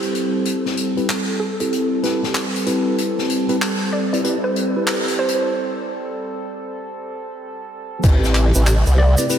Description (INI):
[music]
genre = glitch hop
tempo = 95 BPM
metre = 4/4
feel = swing 64% on 16ths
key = A minor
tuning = A4 = 440 Hz
[part]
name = woody wave-folded pluck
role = melody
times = 0.0-9.3 s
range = A4 to D5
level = -26 LUFS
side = right 2 dB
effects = chorus, cassette tape, analog delay
[part]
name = warbly tape-like pad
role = sustained chords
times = 0.0-9.4 s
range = C3 to A4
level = -24 LUFS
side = right 1 dB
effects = chorus, built-in reverb, vintage 12-bit sampler grit, sidechain pumping
[part]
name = mellow tine electric piano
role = stabs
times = 0.0-9.4 s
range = C4 to C5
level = -23 LUFS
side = left 1 dB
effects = slow stereo tremolo, sidechain pumping, analog delay
[part]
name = unplugged drum kit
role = drums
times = 0.0-9.4 s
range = crash cymbal, handclaps, hi-hat, snare drum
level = -25 LUFS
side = left 1 dB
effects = none
[part]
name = formant-sweep wobble bass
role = bass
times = 8.0-9.2 s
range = A1 to C2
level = -15 LUFS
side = equal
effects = chorus
[part]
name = electronic kick drum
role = drums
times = 8.0-8.2 s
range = none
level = -13 LUFS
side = equal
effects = none
[part]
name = tube shaker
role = percussion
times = 8.0-9.4 s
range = none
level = -28 LUFS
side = right 3 dB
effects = none
[sound]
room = wet lush hall reverb, RT60 2.8 s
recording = dreamy mix soaked in reverb, high-pass filter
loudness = -17 LUFS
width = side -9 dB against mid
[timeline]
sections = 0.0-8.0 A section; 8.0-9.4 B section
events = build-up 0.0-8.0; filter sweep on synth pluck 0.0-8.0; filter sweep 0.0-8.0; break 5.5-8.0; drop 8.0-9.4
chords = 0.0 Am7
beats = | 0.46 1.09 1.72 2.35 | 2.98 3.62 4.25 4.88 | 5.51 6.14 6.77 7.40 | 8.04 8.67 9.30